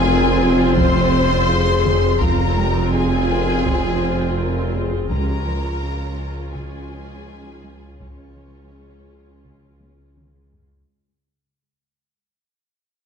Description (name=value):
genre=cinematic, hybrid orchestral and electronic film score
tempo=83 BPM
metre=4/4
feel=straight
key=unclear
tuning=A4 = 439 Hz
part: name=rich symphonic violin section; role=melody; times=0.0-10.1 s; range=Db5 to C6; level=-25 LUFS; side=left 5 dB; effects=none
part: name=rich symphonic violin section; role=second line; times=0.0-10.2 s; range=Db4 to C5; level=-27 LUFS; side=left 1 dB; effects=none
part: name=rich symphonic viola section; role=accompaniment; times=0.0-10.6 s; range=C4 to F4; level=-24 LUFS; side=right 1 dB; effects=none
part: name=dark trombone section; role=sustained chords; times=0.0-10.5 s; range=F3 to Db4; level=-26 LUFS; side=equal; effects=none
part: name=warm French horn section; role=sustained chords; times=0.0-10.5 s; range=Eb4 to C5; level=-26 LUFS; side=left 7 dB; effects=none
part: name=soft round pluck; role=arpeggios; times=0.0-10.7 s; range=Db3 to F4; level=-31 LUFS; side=right 3 dB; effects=none
part: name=rich symphonic cello section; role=bass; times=0.0-10.6 s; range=Db2 to F2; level=-25 LUFS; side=right 3 dB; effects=none
part: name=rich symphonic double bass section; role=bass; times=0.0-10.6 s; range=F1 to Db2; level=-26 LUFS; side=right 4 dB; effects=none
part: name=sub bass with octave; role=bass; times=0.0-10.8 s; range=F1 to Db2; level=-28 LUFS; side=equal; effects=none
part: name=warm tuba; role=bass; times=0.0-10.6 s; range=F1 to Db2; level=-28 LUFS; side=right 3 dB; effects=none
part: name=taiko ensemble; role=drums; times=0.8-10.9 s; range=none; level=-25 LUFS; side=equal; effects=none
room=moderate scoring stage reverb, RT60 1.5 s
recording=dark, warm production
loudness=-16 LUFS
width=side -6 dB against mid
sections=0.0-10.9 A section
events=fade-out 0.0-10.9; drum fill 9.8-10.9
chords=0.0 Fm; 5.1 Db